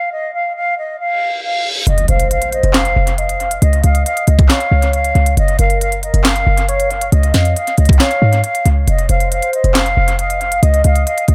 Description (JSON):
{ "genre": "hip hop, trap", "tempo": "137 BPM", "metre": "4/4", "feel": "half-time", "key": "unclear", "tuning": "A4 = 440 Hz", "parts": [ { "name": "mellow concert flute", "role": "melody", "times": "0.0-11.3 s", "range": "Eb5 to F5", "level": "-21 LUFS", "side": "equal", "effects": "dub echo" }, { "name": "reverse cymbal and impact", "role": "sound effects", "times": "1.1-3.6 s", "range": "none", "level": "-26 LUFS", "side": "equal", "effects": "none" }, { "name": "short 808-style bass", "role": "bass", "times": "1.9-11.3 s", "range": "F1 to Ab2", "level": "-16 LUFS", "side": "equal", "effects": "none" }, { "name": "trap drum kit", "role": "drums", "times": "1.9-11.3 s", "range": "handclaps, hi-hat, kick drum, snare drum", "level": "-19 LUFS", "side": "equal", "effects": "overdrive, dub echo" }, { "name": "warm velvety synth lead", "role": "second line", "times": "2.1-11.3 s", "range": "Bb4 to F5", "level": "-24 LUFS", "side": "equal", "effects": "chorus, dub echo" } ], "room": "light reverb", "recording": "echo-heavy mix", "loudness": "-14 LUFS", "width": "mono", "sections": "0.0-1.9 A section; 1.9-11.3 B section", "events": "reverse cymbal 1.1-1.9; impact 1.9-3.6", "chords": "0.0 N.C.; 1.9 F5; 3.6 Db; 5.4 Gb; 7.1 Db; 8.9 F5; 10.6 Db" }